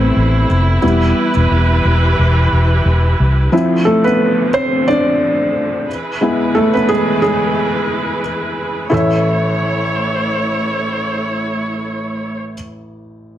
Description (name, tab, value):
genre	pop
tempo	89 BPM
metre	4/4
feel	swing 56% on 16ths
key	unclear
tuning	A4 = 440 Hz
part	felt-muted upright piano	accompaniment	0.0-13.4 s	A1 to E5	-16 LUFS	equal	none
part	warm studio string section	sustained chords	0.0-12.4 s	A2 to C#5	-19 LUFS	right 1 dB	none
part	vintage muted fingered electric bass	bass	0.0-3.5 s	E1 to C2	-13 LUFS	equal	none
room	moderate large studio reverb, RT60 0.8 s, digital ambience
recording	heavily compressed radio sound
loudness	-13 LUFS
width	side -12 dB against mid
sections	0.0-8.9 A section; 8.9-11.6 B section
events	felt piano solo 0.0-8.9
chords	0.0 Am; 0.8 Em; 3.5 Dm7; 5.9 E; 8.9 A